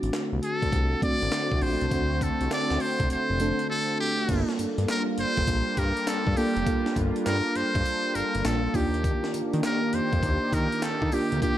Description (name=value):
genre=R&B, new jack swing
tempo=101 BPM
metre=4/4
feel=swing 66% on 16ths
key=G minor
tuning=A4 = 441 Hz
part: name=mellow FM electric piano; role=accompaniment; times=0.0-11.6 s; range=A3 to A4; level=-30 LUFS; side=right 1 dB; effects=chorus
part: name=sweeping resonant pad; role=sustained chords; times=0.0-11.6 s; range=D3 to G4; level=-32 LUFS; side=equal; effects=chorus
part: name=fat analog bass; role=bass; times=0.0-11.4 s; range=F1 to Eb3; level=-28 LUFS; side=equal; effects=none
part: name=breakbeat sampler-style drum kit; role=drums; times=0.0-11.6 s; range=crash cymbal, handclaps, hi-hat, kick drum, snare drum, tambourine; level=-30 LUFS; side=equal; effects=none
part: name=trumpet with metal mute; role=melody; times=0.4-11.6 s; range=G4 to D5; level=-29 LUFS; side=equal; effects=none
room=light reverb, digital ambience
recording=dark, warm production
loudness=-23 LUFS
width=side -12 dB against mid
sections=0.0-4.3 A section; 4.3-11.6 B section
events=none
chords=0.0 D7; 4.3 Gm7; 8.7 Ebmaj7